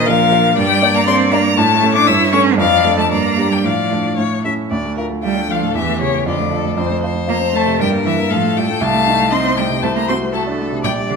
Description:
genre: quick classical-period movement for piano quartet.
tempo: 118 BPM.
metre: 2/4.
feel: rubato.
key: D minor.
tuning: A4 = 440 Hz.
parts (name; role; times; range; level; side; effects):
warm violin; melody; 0.0-11.2 s; C#5 to E6; -17 LUFS; left 8 dB; none.
rich cello; second line; 0.0-11.2 s; C#3 to E4; -20 LUFS; right 8 dB; none.
rich violin; second line; 0.0-11.2 s; F4 to F5; -23 LUFS; left 4 dB; none.
dark baby grand piano; accompaniment; 0.0-11.2 s; Bb1 to D5; -18 LUFS; right 1 dB; none.
room: moderate scoring stage reverb, RT60 1.9 s.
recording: close, detailed microphones.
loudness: -13 LUFS.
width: side -5 dB against mid.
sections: 0.0-4.7 A section; 4.7-11.2 B section.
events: none.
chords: 0.0 Bb; 0.6 Gm; 1.6 A; 2.1 A7/G; 2.6 Dm/F; 3.1 Gm; 3.6 Dm/A; 4.2 A; 4.7 Dm; 5.8 A7/E; 6.3 Dm/F; 6.8 F; 7.8 Gm6; 8.3 F/A; 8.8 Adim/C; 9.8 D7/C.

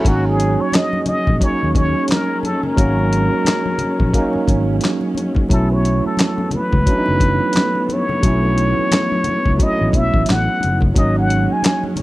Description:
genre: R&B, neo-soul.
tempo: 88 BPM.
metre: 4/4.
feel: swing 59% on 16ths.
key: G# phrygian.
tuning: A4 = 440 Hz.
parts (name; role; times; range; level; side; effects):
barky tine electric piano; accompaniment; 0.0-12.0 s; F#3 to F#4; -20 LUFS; right 3 dB; overdrive, auto-pan.
muted studio string section; sustained chords; 0.0-12.0 s; E3 to C#4; -27 LUFS; left 1 dB; none.
dusty soul sampler-style drum kit; drums; 0.0-12.0 s; handclaps, hi-hat, kick drum, snare drum; -17 LUFS; equal; none.
congas; percussion; 0.0-12.0 s; none; -29 LUFS; left 3 dB; none.
trumpet with plunger mute; melody; 0.1-11.8 s; F#4 to G#5; -21 LUFS; left 1 dB; none.
fingered electric bass; bass; 0.1-12.0 s; F#1 to D#2; -18 LUFS; equal; none.
room: small room ambience.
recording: dry, close 1970s-style studio recording.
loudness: -14 LUFS.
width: side -17 dB against mid.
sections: 0.0-12.0 A section.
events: none.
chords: 0.0 G#9sus4; 5.5 B9sus4; 11.0 G#9sus4.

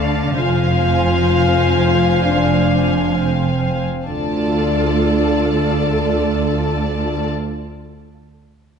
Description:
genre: cinematic.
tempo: 65 BPM (dotted quarters).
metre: 6/8.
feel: straight.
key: D minor.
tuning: A4 = 440 Hz.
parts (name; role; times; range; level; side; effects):
rich symphonic violin section; second line; 0.0-7.3 s; D5 to A5; -24 LUFS; left 5 dB; none.
warm symphonic viola section; accompaniment; 0.0-7.3 s; F4 to F5; -22 LUFS; right 1 dB; none.
mellow French horn section; sustained chords; 0.0-7.3 s; A3 to F4; -20 LUFS; left 5 dB; none.
rich symphonic cello section; bass; 0.0-7.3 s; D2 to D3; -21 LUFS; right 3 dB; none.
warm symphonic double bass section; bass; 0.0-7.3 s; F1 to D2; -21 LUFS; right 4 dB; none.
room: moderate scoring stage reverb, RT60 1.9 s.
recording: nothing above 11.0 kHz.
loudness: -14 LUFS.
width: side -6 dB against mid.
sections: 0.0-4.1 A section; 4.1-7.8 B section.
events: none.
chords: 0.4 Fm; 4.1 Dm.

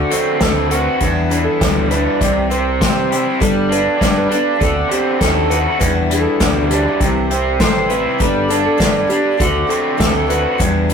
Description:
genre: folk rock and heartland rock.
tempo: 100 BPM.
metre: 4/4.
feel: straight.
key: unclear.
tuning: A4 = 440 Hz.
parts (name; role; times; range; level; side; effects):
clean lap steel guitar; melody; 0.0-10.9 s; F#4 to D5; -22 LUFS; right 2 dB; digital delay.
picked steel-string acoustic guitar; accompaniment; 0.0-10.9 s; E2 to A4; -21 LUFS; left 5 dB; none.
raw garage guitar; riff; 0.0-10.9 s; E2 to C5; -17 LUFS; right 2 dB; overdrive.
gritty driven synth bass; bass; 0.0-10.9 s; G1 to C3; -22 LUFS; equal; none.
unplugged drum kit; drums; 0.1-10.9 s; hi-hat, kick drum, snare drum; -18 LUFS; equal; none.
room: moderate studio reverb, RT60 0.6 s.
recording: rough rehearsal-room recording.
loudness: -13 LUFS.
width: side -6 dB against mid.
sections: 0.0-10.9 A section.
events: none.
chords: 0.0 D7; 1.0 Em7; 2.2 C; 3.4 Gadd9; 4.6 D7; 5.8 Em7; 7.0 C; 8.2 Gadd9; 9.4 D7.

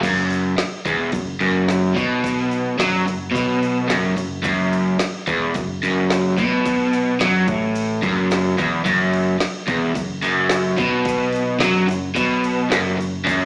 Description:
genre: garage rock duo or trio.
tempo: 109 BPM.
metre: 4/4.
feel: straight.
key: unclear.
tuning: A4 = 440 Hz.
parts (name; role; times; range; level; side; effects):
crunchy overdriven guitar; riff; 0.0-13.5 s; E2 to F#3; -18 LUFS; equal; slapback echo.
picked electric bass; bass; 0.0-13.5 s; E1 to F#2; -28 LUFS; equal; overdrive.
garage drum kit; drums; 0.0-13.4 s; crash cymbal, kick drum, snare drum; -26 LUFS; equal; overdrive, slapback echo.
tube shaker; percussion; 0.0-13.4 s; none; -41 LUFS; equal; none.
room: moderate club reverb, RT60 0.9 s.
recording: live gig heard through the venue's PA, club reverb, small speaker sound.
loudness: -17 LUFS.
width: side -39 dB against mid.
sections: 0.0-13.5 A section.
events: none.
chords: 0.0 Esus2.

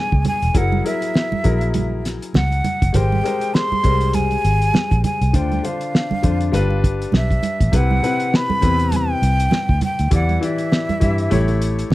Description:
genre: lush 1970s-style soul.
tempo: 100 BPM.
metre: 4/4.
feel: swing 58% on 16ths.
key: unclear.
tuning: A4 = 439 Hz.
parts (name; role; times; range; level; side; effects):
breathy jazz flute; melody; 0.0-11.7 s; E5 to B#5; -23 LUFS; equal; none.
clear baby grand piano; accompaniment; 0.0-11.9 s; B2 to E5; -24 LUFS; left 4 dB; none.
vintage muted fingered electric bass; bass; 0.1-11.9 s; E1 to G2; -19 LUFS; equal; none.
cloth-damped thuddy drum kit; drums; 0.1-11.9 s; hi-hat, kick drum, snare drum; -19 LUFS; equal; none.
congas; percussion; 0.1-11.9 s; none; -26 LUFS; right 5 dB; none.
room: little or no reverb.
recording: dry, close 1970s-style studio recording.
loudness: -16 LUFS.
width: side -17 dB against mid.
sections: 0.0-11.9 A section.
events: none.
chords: 0.0 Bm69; 0.6 F#9; 2.9 G#maj9; 5.3 Dm7; 6.5 G7; 7.7 Cmaj7; 10.1 Em7; 11.3 A7.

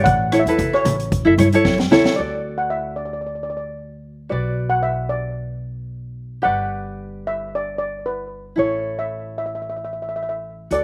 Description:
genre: calypso.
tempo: 113 BPM.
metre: 4/4.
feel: straight.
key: D major.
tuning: A4 = 440 Hz.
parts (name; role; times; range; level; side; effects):
steel pan; melody; 0.0-10.8 s; B4 to F#5; -25 LUFS; equal; slapback echo.
tenor ukulele; accompaniment; 0.0-10.8 s; E4 to E5; -22 LUFS; equal; slapback echo.
upright bass; bass; 0.0-10.8 s; F#1 to G2; -29 LUFS; equal; none.
street-band drum kit; drums; 0.1-2.2, 10.7-10.8 s; hi-hat, kick drum, rim click, snare drum; -25 LUFS; equal; none.
congas; percussion; 0.6-2.2 s; none; -28 LUFS; equal; none.
room: little or no reverb.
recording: recorded outdoors, with no room sound.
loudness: -21 LUFS.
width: mono.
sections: 0.0-2.2 A section; 2.2-10.8 B section.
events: steel pan solo 0.0-2.2; drum fill 1.6-2.2.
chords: 0.1 Aadd9; 2.2 D; 4.3 Bm; 6.4 Gmaj7; 8.6 A.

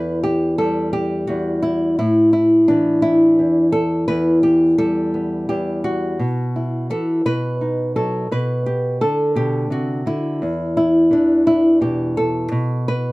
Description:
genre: folk, solo fingerstyle acoustic guitar.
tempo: 57 BPM (dotted quarters).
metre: 6/8.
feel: straight.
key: E minor.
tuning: A4 = 440 Hz.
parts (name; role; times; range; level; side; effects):
nylon-string guitar; solo; 0.0-13.1 s; E2 to B4; -16 LUFS; equal; none.
room: light reverb.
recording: dry, close 1970s-style studio recording.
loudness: -16 LUFS.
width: side -21 dB against mid.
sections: 0.0-13.1 A section.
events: none.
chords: 0.0 Em; 2.0 A5; 4.1 Em; 6.2 Bsus4; 7.2 B; 8.3 Bm; 10.4 E5; 12.5 N.C..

